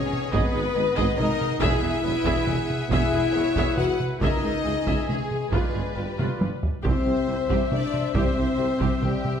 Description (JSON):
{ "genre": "cinematic, epic orchestral film score", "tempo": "138 BPM", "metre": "3/4", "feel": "straight", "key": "unclear", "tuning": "A4 = 440 Hz", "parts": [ { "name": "clear symphonic violin section", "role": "melody", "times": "0.0-9.4 s", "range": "G4 to F#5", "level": "-33 LUFS", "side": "left 4 dB", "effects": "none" }, { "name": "rich symphonic violin section", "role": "second line", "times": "0.0-9.4 s", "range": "G#4 to E5", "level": "-32 LUFS", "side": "left 3 dB", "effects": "none" }, { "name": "dark French horn section", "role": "sustained chords", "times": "0.0-9.4 s", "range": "G3 to F#4", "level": "-27 LUFS", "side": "left 4 dB", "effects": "none" }, { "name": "warm woodwind section", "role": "sustained chords", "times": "0.0-9.4 s", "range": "E3 to F#5", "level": "-36 LUFS", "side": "left 2 dB", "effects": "none" }, { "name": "solo taiko drums", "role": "drums", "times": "0.1-9.4 s", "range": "none", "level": "-27 LUFS", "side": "equal", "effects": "none" }, { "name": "rich symphonic viola section", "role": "accompaniment", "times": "0.3-9.1 s", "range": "F4 to E5", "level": "-32 LUFS", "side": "right 2 dB", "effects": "none" }, { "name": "bright symphonic double bass section", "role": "bass", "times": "0.3-9.1 s", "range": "E1 to C#2", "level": "-32 LUFS", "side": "right 4 dB", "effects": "none" }, { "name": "mellow tuba", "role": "bass", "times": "0.3-9.1 s", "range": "E1 to C#2", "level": "-33 LUFS", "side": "right 4 dB", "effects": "none" }, { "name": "rich symphonic cello section", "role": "bass", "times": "0.3-9.1 s", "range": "C2 to G#2", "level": "-33 LUFS", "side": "right 4 dB", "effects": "none" } ], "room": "wet scoring stage reverb, RT60 1.6 s", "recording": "none", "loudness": "-21 LUFS", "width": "side -8 dB against mid", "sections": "0.0-6.8 A section; 6.8-9.4 A section", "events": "drum fill 6.2-6.8", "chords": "0.0 G#m; 1.6 Eadd9; 4.2 C#madd9; 5.5 G7; 6.8 C" }